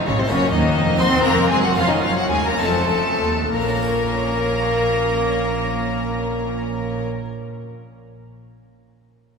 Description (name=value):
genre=classical, baroque-style concerto movement with solo episodes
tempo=62-86 BPM (dotted quarters)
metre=6/8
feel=straight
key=Bb minor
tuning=A4 = 440 Hz
part: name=rich chamber violin section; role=second line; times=0.0-7.0 s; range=C4 to C5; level=-23 LUFS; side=left 2 dB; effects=none
part: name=harpsichord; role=accompaniment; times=0.0-7.3 s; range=Eb2 to Db5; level=-28 LUFS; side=right 1 dB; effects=none
part: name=rich studio viola section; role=accompaniment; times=0.0-7.0 s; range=A3 to Db4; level=-28 LUFS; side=right 1 dB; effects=none
part: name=rich chamber violin section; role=melody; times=0.1-7.0 s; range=C5 to C6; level=-24 LUFS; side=left 3 dB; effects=none
part: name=warm cello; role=melody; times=0.1-7.0 s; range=C3 to C4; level=-25 LUFS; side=left 2 dB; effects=none
part: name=dark chamber double bass section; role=bass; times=0.1-7.0 s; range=F1 to Eb2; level=-28 LUFS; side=right 4 dB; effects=none
part: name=warm symphonic cello section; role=bass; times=0.1-7.0 s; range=Eb2 to Bb2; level=-26 LUFS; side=right 2 dB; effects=none
room=wet church reverb, RT60 3.6 s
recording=recorded in a church or concert hall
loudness=-17 LUFS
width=side -5 dB against mid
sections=0.0-3.5 A section; 3.5-7.4 B section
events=slowing down 0.0-3.5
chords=0.3 Gb; 1.0 Cdim; 1.8 Bbm/F; 2.6 F7; 3.5 Bbm